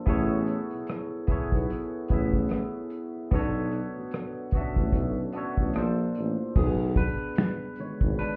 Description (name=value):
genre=R&B, neo-soul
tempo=74 BPM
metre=4/4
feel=swing 55% on 16ths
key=B dorian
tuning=A4 = 442 Hz
part: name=barky tine electric piano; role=accompaniment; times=0.0-8.4 s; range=D3 to E5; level=-34 LUFS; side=equal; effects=subtle chorus
part: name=warm tuba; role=bass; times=0.1-8.2 s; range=G#1 to B1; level=-31 LUFS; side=equal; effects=none
part: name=unplugged drum kit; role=drums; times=0.1-8.4 s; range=crash cymbal, finger snaps, hi-hat, kick drum, rim click, snare drum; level=-29 LUFS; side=equal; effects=none
room=light reverb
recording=heard muffled through a wall, club reverb, EQ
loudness=-28 LUFS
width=mono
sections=0.0-6.6 A section; 6.6-8.4 B section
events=tine electric piano solo 6.6-8.4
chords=0.1 Amaj9; 3.3 Bm9; 5.7 A#maj9; 6.6 Bm69